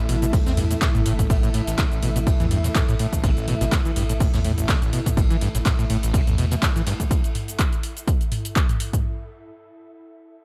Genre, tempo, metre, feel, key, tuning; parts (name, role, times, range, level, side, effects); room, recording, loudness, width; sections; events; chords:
acid house; 124 BPM; 4/4; swing 55% on 16ths; A4 = 440 Hz
dark analog pad; sustained chords; 0.0-7.1 s; E3 to E5; -36 LUFS; equal; chorus, sidechain pumping
overdriven acid bass; riff; 0.0-7.0 s; A1 to C4; -28 LUFS; equal; distortion, analog chorus, sidechain pumping, digital delay
ethereal airy pad; texture; 0.0-9.0 s; E4 to E5; -36 LUFS; equal; ensemble chorus, built-in reverb, sidechain pumping
round analog bass; bass; 0.1-6.8 s; G1 to A2; -28 LUFS; equal; sidechain pumping
booming analog drum machine; drums; 0.1-9.0 s; cabasa, handclaps, hi-hat, toms; -30 LUFS; equal
vintage brush drum kit; drums; 0.1-7.0 s; hi-hat, ride cymbal, snare drum; -39 LUFS; equal; sidechain pumping on cymbals, high-pass filter on cymbals, sidechain pumping on hats, high-pass filter on hats, high-pass filter on snare, high-pass filter on room
electronic kick drum; drums; 0.3-9.0 s; -24 LUFS; equal
digital ambience; dark, warm production; -22 LUFS; mono
0.0-9.0 A section
drop 0.0-9.0
0.0 A5